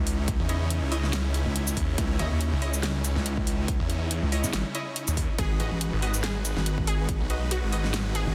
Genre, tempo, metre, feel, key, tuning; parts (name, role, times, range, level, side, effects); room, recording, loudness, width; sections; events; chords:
heavy wobble dubstep; 141 BPM; 4/4; swing 55% on 16ths, half-time; A4 = 440 Hz
supersaw chords; sustained chords; 0.0-8.3 s; C#3 to B4; -37 LUFS; equal; sidechain pumping
wobble bass; bass; 0.0-8.3 s; G#1 to E2; -30 LUFS; equal; chorus, overdrive
dubstep drum kit; drums; 0.1-8.2 s; hi-hat, shaker, snare drum; -34 LUFS; equal
electronic kick drum; drums; 0.3-7.2 s; -31 LUFS; equal
snarling distorted saw bass; bass; 0.4-8.2 s; G#1 to E2; -30 LUFS; equal; overdrive
orchestra-hit-like synth stab; stabs; 0.5-7.9 s; E4 to D#5; -39 LUFS; equal; built-in reverb, tape echo
unison pluck; melody; 5.4-8.3 s; F#4 to G#4; -39 LUFS; equal; tape echo
digital ambience; dense, heavily limited modern master; -27 LUFS; mono
0.0-8.3 A section
0.0 C#madd9; 5.4 G#m7